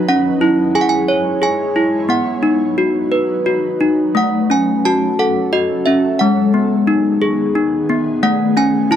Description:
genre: children's music, lullaby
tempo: 89 BPM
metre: 3/4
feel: rubato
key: unclear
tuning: A4 = 439 Hz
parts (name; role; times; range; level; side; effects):
- desk bells; melody; 0.0-9.0 s; G#3 to A5; -13 LUFS; equal; none
- granular cloud pad; sustained chords; 0.0-9.0 s; D#3 to C#5; -24 LUFS; right 1 dB; built-in reverb
room: little or no reverb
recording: dry, close 1970s-style studio recording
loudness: -13 LUFS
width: side -10 dB against mid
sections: 0.0-9.0 A section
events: none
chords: 0.1 C#m; 2.1 B; 4.2 F#m; 6.2 G#m; 8.2 A

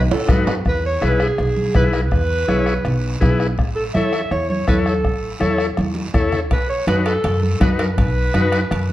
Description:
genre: latin, cumbia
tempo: 164 BPM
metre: 4/4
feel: straight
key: E major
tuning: A4 = 440 Hz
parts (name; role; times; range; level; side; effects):
- upright bass; bass; 0.0-8.9 s; A1 to A2; -21 LUFS; equal; none
- bright clarinet; second line; 0.1-8.9 s; G#4 to E5; -23 LUFS; right 1 dB; none
- timbales and cowbell; percussion; 0.1-0.6, 6.5-8.9 s; none; -29 LUFS; right 5 dB; none
- combo organ; accompaniment; 0.3-8.6 s; D#4 to C#5; -23 LUFS; left 3 dB; none
- bombo; percussion; 0.3-8.9 s; none; -21 LUFS; left 1 dB; none
- congas; percussion; 0.3-8.9 s; none; -25 LUFS; right 2 dB; none
- guiro; percussion; 0.3-8.9 s; none; -38 LUFS; right 4 dB; none
room: moderate large studio reverb, RT60 1.3 s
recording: dark, warm production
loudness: -16 LUFS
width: side -14 dB against mid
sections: 0.7-8.9 A section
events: drum fill 0.1-0.7, 5.8-6.5; clarinet solo 0.7-8.9; transistor combo organ fill 3.0-3.6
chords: 0.0 B7; 0.7 E; 3.6 A; 6.5 B7

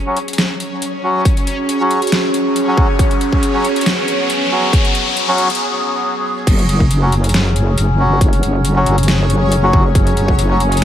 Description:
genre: deep dubstep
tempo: 138 BPM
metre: 4/4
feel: swing 53% on 16ths, half-time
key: unclear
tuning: A4 = 441 Hz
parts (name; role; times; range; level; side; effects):
- overtone-sweeping drone; sustained chords; 0.0-10.8 s; F#3 to G#4; -20 LUFS; right 2 dB; chorus, built-in reverb, phaser
- riser; sound effects; 2.1-5.6 s; none; -22 LUFS; left 2 dB; none
- backwards swelling texture; texture; 0.0-10.8 s; C#4 to C#5; -25 LUFS; left 3 dB; built-in reverb
- melodica; stabs; 0.1-10.6 s; F#3 to F#4; -20 LUFS; left 1 dB; low-pass filter, dub echo
- dubstep drum kit; drums; 0.2-10.8 s; crash cymbal, hi-hat, snare drum; -20 LUFS; equal; overdrive
- electronic kick drum; drums; 1.3-10.4 s; none; -14 LUFS; equal; overdrive
- wobble bass; bass; 6.5-10.8 s; F#1; -14 LUFS; equal; chorus, tube saturation
room: light reverb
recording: vinyl crackle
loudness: -12 LUFS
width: side -10 dB against mid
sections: 0.0-6.5 A section; 6.5-10.8 B section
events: build-up 0.0-6.5; filter sweep on melodica 0.0-6.5; riser 2.1-5.6; break 5.6-6.5; drop 6.5-10.8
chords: 0.0 F#5

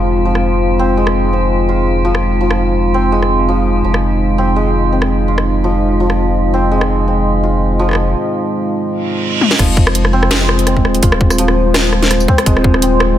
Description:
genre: half-time drum and bass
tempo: 167 BPM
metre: 4/4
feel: swing 54% on 16ths, half-time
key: F minor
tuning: A4 = 438 Hz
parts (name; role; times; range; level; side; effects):
- dark analog pad; sustained chords; 0.0-13.2 s; Ab3 to Eb5; -18 LUFS; right 1 dB; chorus, sidechain pumping
- santur; arpeggios; 0.0-13.2 s; F3 to F4; -18 LUFS; equal; dub echo
- saturated sub bass; bass; 0.0-13.2 s; Eb1 to F1; -16 LUFS; equal; none
- metallic inharmonic drone; texture; 0.0-8.2 s; F4; -21 LUFS; left 2 dB; chorus, built-in reverb
- drum and bass drum kit; drums; 0.4-13.1 s; crash cymbal, hi-hat, rim click, snare drum, tambourine, toms; -17 LUFS; equal; overdrive, low-pass filter on snare, low-pass filter on toms, low-pass filter on hats, low-pass filter on cymbals, low-pass filter on perc
- reverse cymbal; sound effects; 9.0-9.6 s; none; -20 LUFS; right 8 dB; none
- electronic kick drum; drums; 9.6-12.7 s; none; -12 LUFS; equal; overdrive
room: light reverb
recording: none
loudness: -11 LUFS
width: side -11 dB against mid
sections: 0.0-9.6 A section; 9.6-13.2 B section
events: break 8.2-9.6; reverse cymbal 9.0-9.6; drum fill 9.4; drop 9.6-13.2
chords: 0.0 Fm

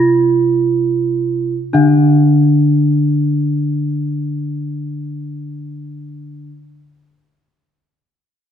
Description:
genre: gamelan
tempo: free time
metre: none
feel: none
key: unclear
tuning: A4 = 442 Hz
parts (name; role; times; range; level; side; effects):
- gamelan-type bronze metallophone; melody; 0.0-6.5 s; D4 to F4-45c; -16 LUFS; right 3 dB; none
- gamelan-type bronze metallophone; accompaniment; 0.0-6.5 s; C3-25c to D3; -17 LUFS; left 2 dB; none
room: wet recital hall reverb, RT60 1.4 s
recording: none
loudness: -13 LUFS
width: side -9 dB against mid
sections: 0.0-1.5 A section; 1.5-8.5 B section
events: slowing down 0.0-1.5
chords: none

